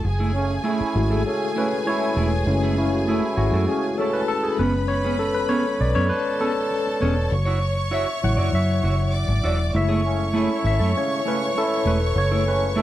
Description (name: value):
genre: soul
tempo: 99 BPM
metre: 4/4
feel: straight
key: F# minor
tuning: A4 = 441 Hz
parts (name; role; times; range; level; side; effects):
- warm studio violin section; second line; 0.0-12.8 s; G#4 to D6; -29 LUFS; right 1 dB; none
- tine electric piano; accompaniment; 0.0-12.8 s; C#3 to F#5; -24 LUFS; left 2 dB; medium stereo tremolo
- clean electric guitar; riff; 0.0-12.8 s; A3 to D5; -28 LUFS; right 4 dB; spring reverb
- vintage muted fingered electric bass; bass; 0.0-12.8 s; E1 to F#2; -22 LUFS; equal; none
- clear trombone section; stabs; 0.3-4.2, 10.0-12.8 s; C#3 to E4; -26 LUFS; right 2 dB; none
room: little or no reverb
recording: dry, close 1970s-style studio recording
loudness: -19 LUFS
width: side -13 dB against mid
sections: 0.0-12.8 A section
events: tine electric piano solo 0.0-12.8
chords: 0.0 F#m9; 4.6 Amaj9/F#; 7.3 Dmaj9/F#; 9.7 F#m9